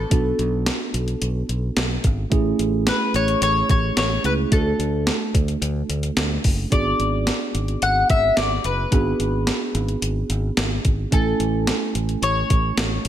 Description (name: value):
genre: 1980s-style pop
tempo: 109 BPM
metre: 4/4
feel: straight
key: A major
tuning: A4 = 438 Hz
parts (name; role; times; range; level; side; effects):
- mandolin; melody; 0.0-13.1 s; A4 to F#5; -23 LUFS; left 3 dB; ping-pong delay
- tine electric piano; accompaniment; 0.0-13.1 s; A3 to G#5; -26 LUFS; right 4 dB; none
- fingered electric bass; bass; 0.0-13.1 s; F#1 to D2; -24 LUFS; equal; none
- clean 12-bit digital drum machine; drums; 0.1-13.1 s; hi-hat, kick drum, snare drum; -22 LUFS; equal; gated reverb
room: light reverb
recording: none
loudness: -18 LUFS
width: side -11 dB against mid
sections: 0.0-13.1 A section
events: none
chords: 0.0 Bm7; 2.3 Amaj7; 4.5 D; 6.7 G#m7b5; 11.1 Amaj7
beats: | 0.11 0.67 1.22 1.76 | 2.32 2.87 3.42 3.97 | 4.52 5.07 5.62 6.17 | 6.72 7.27 7.82 8.37 | 8.92 9.47 10.02 10.57 | 11.12 11.67 12.22 12.78